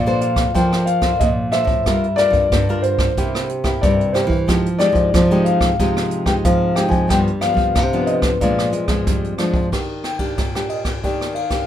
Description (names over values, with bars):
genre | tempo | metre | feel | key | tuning
samba and choro | 92 BPM | 4/4 | straight | unclear | A4 = 440 Hz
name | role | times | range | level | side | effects
warm concert grand piano | melody | 0.0-11.7 s | C5 to Ab5 | -20 LUFS | left 2 dB | none
nylon-string guitar | accompaniment | 0.0-11.7 s | F2 to C5 | -22 LUFS | left 1 dB | none
nylon-string guitar | bass | 0.0-9.7 s | G2 to Ab3 | -20 LUFS | right 1 dB | none
jazz brush drum kit | drums | 0.1-11.7 s | hi-hat, kick drum, ride cymbal, rim click | -21 LUFS | equal | none
room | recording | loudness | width
light reverb | minimal, uncompressed stereo recording | -15 LUFS | side -10 dB against mid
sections
0.0-9.7 A section; 9.7-11.7 B section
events
none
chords
0.0 Bbmaj9; 1.9 Gm7; 3.2 C7; 4.5 Fm9; 7.1 G7; 8.4 Bb7; 9.7 Ebmaj7